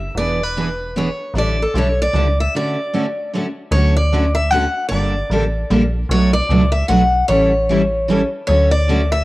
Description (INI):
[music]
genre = acoustic string swing (jazz manouche)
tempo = 151 BPM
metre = 3/4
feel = swing 62% on 8ths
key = D major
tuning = A4 = 440 Hz
[part]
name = picked steel-string acoustic guitar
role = melody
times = 0.0-9.2 s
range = A4 to F#5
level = -19 LUFS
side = left 1 dB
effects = cassette tape
[part]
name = metallic FM bass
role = bass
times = 0.0-9.2 s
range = E1 to D2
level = -18 LUFS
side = equal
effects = none
[part]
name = picked steel-string acoustic guitar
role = accompaniment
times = 0.2-9.0 s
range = B2 to A4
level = -22 LUFS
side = left 2 dB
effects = none
[part]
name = picked steel-string acoustic guitar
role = accompaniment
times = 0.2-9.0 s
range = B2 to B4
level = -21 LUFS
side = right 4 dB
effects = none
[sound]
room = light reverb, studio ambience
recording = home recording on cassette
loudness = -14 LUFS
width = side -18 dB against mid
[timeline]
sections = 0.0-3.7 A section; 3.7-9.2 B section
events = break 2.5-3.7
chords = 0.2 E7; 1.4 A7sus4; 2.5 Dmaj7; 4.9 Gmadd9; 6.1 Bm7; 7.3 A7; 8.5 Dmaj7